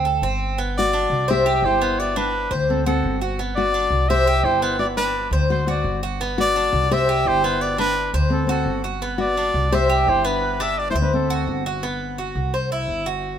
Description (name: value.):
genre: latin.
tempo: 171 BPM.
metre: 4/4.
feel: straight.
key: G major.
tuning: A4 = 439 Hz.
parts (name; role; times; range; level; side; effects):
Cuban tres; arpeggios; 0.0-13.4 s; B3 to C5; -23 LUFS; right 2 dB; none.
upright bass; bass; 0.0-13.4 s; G1 to D2; -24 LUFS; equal; none.
warm trumpet; melody; 0.8-11.6 s; A4 to E5; -23 LUFS; left 1 dB; none.
nylon-string guitar; second line; 0.8-11.6 s; C4 to G4; -26 LUFS; left 4 dB; none.
room: moderate plate reverb, RT60 3.5 s.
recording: minimal, uncompressed stereo recording.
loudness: -18 LUFS.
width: side -9 dB against mid.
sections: 0.6-11.8 A section; 11.8-13.4 B section.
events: none.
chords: 0.0 D5; 0.6 Gmaj7; 1.3 Cmaj7; 2.0 G; 2.7 D7; 3.4 Gmaj7; 4.1 Cmaj7; 4.8 G; 5.5 D7; 6.2 Gmaj7; 6.9 Cmaj7; 7.6 G; 8.3 D7; 9.0 Gmaj7; 9.7 Cmaj7; 10.4 G; 11.1 D7; 11.8 Gmaj7; 12.5 C.